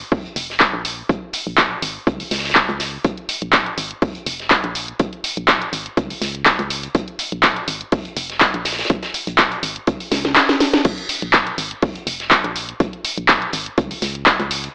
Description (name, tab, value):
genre	piano house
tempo	123 BPM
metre	4/4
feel	swing 54% on 16ths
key	unclear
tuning	A4 = 440 Hz
part	organ-like FM bass	bass	0.0-14.7 s	F1 to Db2	-29 LUFS	equal	sidechain pumping
part	electronic kick drum	drums	0.1-14.4 s	none	-20 LUFS	equal	overdrive
part	loose indie drum kit	drums	0.1-14.7 s	hi-hat, snare drum	-29 LUFS	equal	none
part	house drum kit	drums	0.4-14.7 s	crash cymbal, handclaps, hi-hat, snare drum	-16 LUFS	equal	overdrive
room	light reverb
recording	AM radio sound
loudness	-16 LUFS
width	side -31 dB against mid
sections	0.0-14.7 A section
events	drum fill 10.1-10.9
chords	none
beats	0.12 0.61 | 1.09 1.58 2.07 2.56 | 3.05 3.53 4.02 4.51 | 5.00 5.49 5.97 6.46 | 6.95 7.44 7.92 8.41 | 8.90 9.39 9.88 10.36 | 10.85 11.34 11.83 12.31 | 12.80 13.29 13.78 14.27